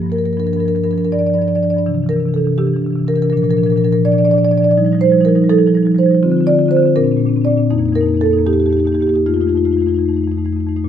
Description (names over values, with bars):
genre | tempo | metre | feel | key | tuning
classical, contemporary piece for solo marimba | 74-84 BPM (dotted quarters) | 6/8 | rubato | unclear | A4 = 440 Hz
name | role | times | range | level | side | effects
marimba with soft mallets | solo | 0.0-10.9 s | F2 to D5 | -12 LUFS | equal | none
room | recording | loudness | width
moderate stone room reverb, RT60 1.1 s | none | -12 LUFS | side -9 dB against mid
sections
0.0-10.8 A section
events
none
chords
0.4 Bb/G; 1.9 Cadd9; 3.3 Bb; 4.8 F9; 6.2 Dm7; 7.0 Bbadd9; 7.7 F11; 9.3 F7